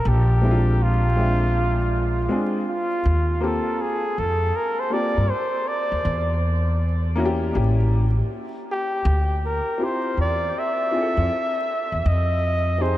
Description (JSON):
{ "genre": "hip hop, jazz-hop", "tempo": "80 BPM", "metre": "4/4", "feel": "swing 66% on 16ths", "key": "unclear", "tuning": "A4 = 440 Hz", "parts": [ { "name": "breathy flugelhorn", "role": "melody", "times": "0.0-13.0 s", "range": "F4 to E5", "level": "-24 LUFS", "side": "equal", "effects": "tape echo" }, { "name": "upright bass", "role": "bass", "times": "0.0-13.0 s", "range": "A1 to G2", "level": "-20 LUFS", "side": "equal", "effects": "none" }, { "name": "warm upright piano", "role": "accompaniment", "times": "0.4-13.0 s", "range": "Ab3 to E5", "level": "-27 LUFS", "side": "left 2 dB", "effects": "none" } ], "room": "moderate huge ambient reverb, RT60 7.4 s", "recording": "dreamy mix soaked in reverb, vinyl crackle", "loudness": "-20 LUFS", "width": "side -14 dB against mid", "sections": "0.0-13.0 A section", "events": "none", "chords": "0.1 Bb9; 3.0 Eb69; 6.0 Edim; 7.5 A7b9; 9.1 Dm11; 12.1 Fm9", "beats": "| 0.05 0.80 1.55 2.30 | 3.05 3.80 4.55 5.30 | 6.05 6.80 7.55 8.30 | 9.05 9.80 10.55 11.30 | 12.05 12.80" }